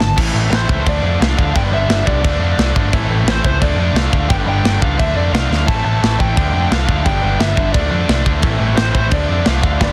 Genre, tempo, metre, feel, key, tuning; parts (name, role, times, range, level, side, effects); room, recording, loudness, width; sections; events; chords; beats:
punk rock; 174 BPM; 4/4; straight; A4 = 440 Hz
bluesy overdriven lead guitar; melody; 0.0-9.9 s; C5 to A5; -24 LUFS; equal; distortion
distorted electric guitar; riff; 0.0-9.9 s; G2 to D4; -25 LUFS; equal; overdrive
tight distorted guitar; riff; 0.0-9.9 s; G2 to E4; -25 LUFS; equal; distortion
overdriven picked electric bass; bass; 0.0-9.9 s; G1 to F2; -20 LUFS; equal
tight metal drum kit; drums; 0.0-9.9 s; crash cymbal, kick drum, snare drum; -20 LUFS; equal; soft clipping on kick
light reverb, small room ambience; dense, heavily limited modern master; -15 LUFS; mono
0.2-9.9 A section
drum fill 0.0, 5.5
0.2 Am; 0.9 Dm; 1.5 G; 2.2 Dm; 2.9 Am; 3.6 Dm; 4.3 G; 5.0 Dm; 5.7 Am; 6.4 Dm; 7.0 G; 7.7 Dm; 8.4 Am; 9.1 Dm
| 0.16 0.51 0.85 1.20 | 1.54 1.89 2.23 2.58 | 2.92 3.27 3.61 3.95 | 4.30 4.64 4.99 5.33 | 5.67 6.02 6.36 6.71 | 7.05 7.39 7.74 8.08 | 8.42 8.77 9.11 9.46 | 9.80